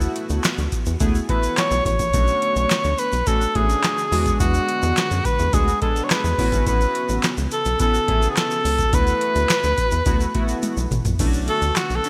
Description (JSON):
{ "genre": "early-eighties boogie funk", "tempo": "106 BPM", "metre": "4/4", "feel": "straight", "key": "B dorian", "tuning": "A4 = 440 Hz", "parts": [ { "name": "chorused polysynth", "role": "accompaniment", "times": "0.0-12.1 s", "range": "G#3 to G#4", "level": "-30 LUFS", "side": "equal", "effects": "none" }, { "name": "phased string machine", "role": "sustained chords", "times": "0.0-12.1 s", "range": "C#3 to F#4", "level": "-36 LUFS", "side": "equal", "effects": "none" }, { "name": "rubbery square bass", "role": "bass", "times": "0.0-12.0 s", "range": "G#1 to F#2", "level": "-25 LUFS", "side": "equal", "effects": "none" }, { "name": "booming analog drum machine", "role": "drums", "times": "0.0-12.1 s", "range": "crash cymbal, handclaps, hi-hat, kick drum, snare drum, toms", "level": "-25 LUFS", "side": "equal", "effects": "gated reverb" }, { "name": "tube shaker", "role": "percussion", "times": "0.0-12.1 s", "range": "none", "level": "-38 LUFS", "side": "equal", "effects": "none" }, { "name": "warm cor anglais", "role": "melody", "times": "1.3-12.1 s", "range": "F#4 to C#5", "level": "-24 LUFS", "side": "equal", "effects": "none" } ], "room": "light reverb", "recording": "bright 1980s-style digital production", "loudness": "-20 LUFS", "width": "mono", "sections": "0.0-11.2 A section", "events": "drum fill 10.6-11.2", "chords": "0.0 D69; 2.1 Bm9; 4.1 E9; 6.4 A69; 8.9 D69; 11.2 Bm9", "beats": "0.44 1.01 1.57 | 2.14 2.71 3.27 3.84 | 4.40 4.97 5.54 6.10 | 6.67 7.23 7.80 8.37 | 8.93 9.50 10.06 10.63 | 11.20 11.76" }